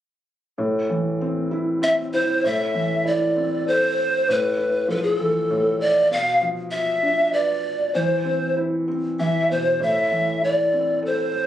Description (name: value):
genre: children's music, lullaby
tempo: 98 BPM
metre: 3/4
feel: straight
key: A minor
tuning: A4 = 440 Hz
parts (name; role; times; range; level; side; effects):
- felt-muted upright piano; accompaniment; 0.6-11.5 s; A2 to B4; -24 LUFS; equal; none
- breathy polished pan flute; melody; 1.8-11.5 s; A4 to F5; -20 LUFS; equal; none
room: moderate studio reverb, RT60 0.7 s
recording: recorded on a phone in the room, club reverb, compression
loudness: -19 LUFS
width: side -11 dB against mid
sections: 0.6-2.4 A section; 2.4-11.5 B section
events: none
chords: 0.6 Am; 4.3 Dm69/A (rootless); 6.1 Bdim; 7.9 C/E; 9.2 E5; 9.8 Am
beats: | 0.58 1.20 1.81 | 2.43 3.05 3.67 | 4.28 4.89 5.50 | 6.11 6.71 7.33 | 7.94 8.56 9.18 | 9.80 10.41 11.02